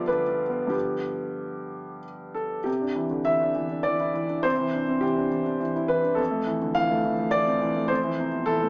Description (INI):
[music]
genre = neoclassical minimalist piano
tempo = 90-109 BPM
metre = 3/4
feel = rubato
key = C major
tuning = A4 = 440 Hz
[part]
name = clear upright piano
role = solo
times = 0.0-8.7 s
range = F2 to F5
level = -26 LUFS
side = equal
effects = none
[sound]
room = light reverb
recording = small speaker sound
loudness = -26 LUFS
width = mono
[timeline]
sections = 0.0-2.7 A section; 2.7-8.7 B section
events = none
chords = 0.0 G7; 2.7 Cadd9; 6.2 Fmaj7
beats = 0.10 | 0.74 1.40 2.04 | 2.67 3.27 3.86 | 4.44 5.03 5.62 | 6.20 6.76 7.33 | 7.90 8.46